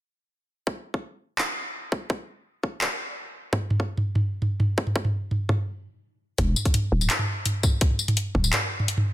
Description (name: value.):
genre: half-time drum and bass.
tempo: 168 BPM.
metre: 4/4.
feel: half-time.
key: unclear.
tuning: A4 = 440 Hz.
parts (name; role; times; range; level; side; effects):
electronic kick drum; drums; 0.7-8.4 s; none; -24 LUFS; equal; overdrive, high-pass filter on kick, small room reverb.
drum and bass drum kit; drums; 1.4-9.0 s; handclaps, hi-hat, tambourine, toms; -24 LUFS; equal; overdrive, small room reverb.
growling 808-style bass; bass; 6.4-8.5 s; D1 to E1; -23 LUFS; equal; none.
room: light reverb.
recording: dense, heavily limited modern master.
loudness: -23 LUFS.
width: side -14 dB against mid.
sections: 0.7-6.4 A section; 6.4-9.1 B section.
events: stop 5.7-6.4; drop 6.4-9.1.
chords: none.